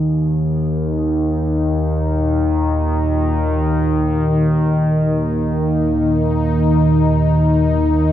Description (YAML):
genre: dark ambient drone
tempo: free time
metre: none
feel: none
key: unclear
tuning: A4 = 440 Hz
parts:
  - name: analog drone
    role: drone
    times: 0.0-8.1 s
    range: Eb2 to Eb3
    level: -16 LUFS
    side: equal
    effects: chorus
  - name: sweeping resonant pad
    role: sustained chords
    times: 2.0-8.1 s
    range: Bb2 to Eb4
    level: -20 LUFS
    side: left 1 dB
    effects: chorus, shimmer reverb
room: wet cathedral reverb, RT60 5.5 s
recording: none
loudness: -14 LUFS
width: side -11 dB against mid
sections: 0.0-8.1 A section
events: none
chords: 0.0 Eb5